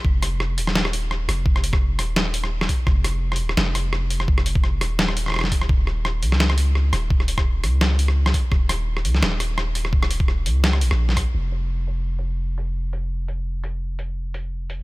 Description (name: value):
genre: half-time drum and bass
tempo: 170 BPM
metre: 4/4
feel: swing 54% on 16ths, half-time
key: unclear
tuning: A4 = 439 Hz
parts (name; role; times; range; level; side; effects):
- long sustained 808-style bass; bass; 0.0-14.8 s; Eb1 to Db2; -22 LUFS; equal; none
- electronic kick drum; drums; 0.0-11.2 s; none; -20 LUFS; equal; none
- boom bap sampler-style drum kit; drums; 0.2-14.8 s; hi-hat, rim click, snare drum; -24 LUFS; equal; low-pass filter on hats, low-pass filter on snare
room: digital ambience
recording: none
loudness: -19 LUFS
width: side -21 dB against mid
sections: 0.0-11.3 A section; 11.3-14.8 B section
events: none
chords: none